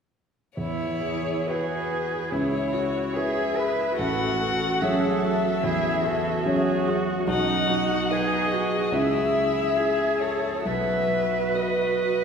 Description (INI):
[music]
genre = classical, slow romantic movement for piano quartet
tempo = 71 BPM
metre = 4/4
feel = uneven beats, rubato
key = E major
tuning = A4 = 439 Hz
[part]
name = dark violin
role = melody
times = 0.6-12.2 s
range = B4 to F#5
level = -27 LUFS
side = left 4 dB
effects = none
[part]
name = dark cello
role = second line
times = 0.6-12.2 s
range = D#4 to B4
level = -28 LUFS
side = right 3 dB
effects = none
[part]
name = warm grand piano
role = accompaniment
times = 0.6-12.2 s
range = A1 to C#5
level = -27 LUFS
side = right 1 dB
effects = none
[part]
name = warm viola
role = accompaniment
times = 0.6-12.2 s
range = D#4 to B4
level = -30 LUFS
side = equal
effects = none
[sound]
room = wet church reverb, RT60 2.7 s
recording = recorded in a church or concert hall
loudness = -22 LUFS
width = side -6 dB against mid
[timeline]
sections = 0.6-12.2 A section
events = none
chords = 0.6 E; 2.3 C#m7; 4.0 F#m7/A; 7.3 B; 8.9 C#m; 10.7 B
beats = | 0.57 1.48 2.32 3.15 | 3.98 4.81 5.64 6.46 | 7.28 8.11 8.93 9.77 | 10.65 11.55